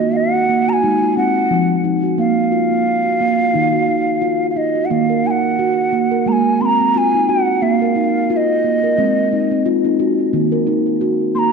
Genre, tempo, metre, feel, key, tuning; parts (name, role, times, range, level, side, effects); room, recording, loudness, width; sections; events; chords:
world meditative; 88 BPM; 4/4; swing 56% on 16ths; Eb kumoi; A4 = 440 Hz
mellow hollow bansuri; melody; 0.0-11.5 s; Eb5 to C6; -18 LUFS; right 1 dB; ping-pong delay
steel tongue drum; arpeggios; 0.0-11.5 s; Eb3 to Bb4; -16 LUFS; right 1 dB; ping-pong delay
wet recital hall reverb, RT60 1.4 s, small room ambience; dark, warm production; -14 LUFS; side -5 dB against mid
0.0-4.9 A section; 4.9-11.5 B section
0.0 Ebm; 0.8 Ab; 2.2 Bb5; 3.6 Ebm; 6.3 Ab; 7.6 Bb5; 9.0 Ab; 10.3 Ebm